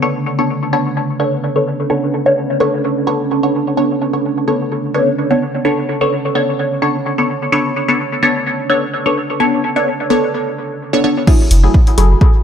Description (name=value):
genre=dub techno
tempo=128 BPM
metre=4/4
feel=swing 54% on 16ths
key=unclear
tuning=A4 = 439 Hz
part: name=deep dark ambient pad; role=sustained chords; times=0.0-11.2 s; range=C#4 to C#5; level=-20 LUFS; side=right 2 dB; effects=chorus, built-in reverb, sidechain pumping
part: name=filtered dub chord stab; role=stabs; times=0.0-12.2 s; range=F#3 to C#5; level=-15 LUFS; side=left 1 dB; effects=phaser, sidechain pumping, dub echo
part: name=electronic kick drum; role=drums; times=11.3-12.3 s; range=none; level=-10 LUFS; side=equal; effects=none
part: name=punchy analog drum machine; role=drums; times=11.3-12.1 s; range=crash cymbal, hi-hat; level=-23 LUFS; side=left 2 dB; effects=none
part: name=pure sine sub bass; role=bass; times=11.5-12.1 s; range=F#1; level=-10 LUFS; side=equal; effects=sidechain pumping
room=light reverb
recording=echo-heavy mix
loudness=-13 LUFS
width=side -8 dB against mid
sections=0.0-11.3 A section; 11.3-12.4 B section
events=filter sweep on ambient pad 0.0-11.3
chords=0.0 Bm9; 11.3 F#m9